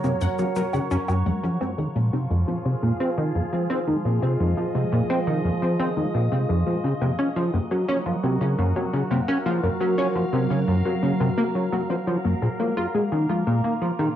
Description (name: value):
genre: ambient, sequencer-driven space music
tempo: 86 BPM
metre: 4/4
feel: straight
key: unclear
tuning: A4 = 440 Hz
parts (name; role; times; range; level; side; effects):
- evolving wavetable pad; sustained chords; 0.0-14.2 s; F3 to F5; -28 LUFS; right 1 dB; phaser, built-in reverb
- wide unison pluck; arpeggios; 0.0-14.1 s; Ab3 to Gb5; -32 LUFS; left 5 dB; auto-pan, tape echo
- plucky analog bass; riff; 0.0-14.1 s; F2 to F4; -22 LUFS; equal; ensemble chorus, tape echo
- cabasa and woodblock; percussion; 0.0-1.2 s; none; -35 LUFS; equal; cassette tape, tape echo
room: wet studio reverb, RT60 0.6 s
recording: home recording on cassette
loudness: -21 LUFS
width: side -11 dB against mid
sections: 0.0-1.3 A section; 1.3-14.2 B section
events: filter sweep on analog synth bass 0.0-1.3; filter sweep on synth arpeggio sound 1.3-14.2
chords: 0.0 Gb; 1.3 Fm7; 6.8 Gbmaj7; 12.4 Bb7(no3)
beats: 0.56 | 1.26 1.96 2.65 3.35 | 4.05 4.75 5.45 6.14 | 6.84 7.54 8.24 8.93 | 9.63 10.33 11.03 11.72 | 12.42 13.12 13.82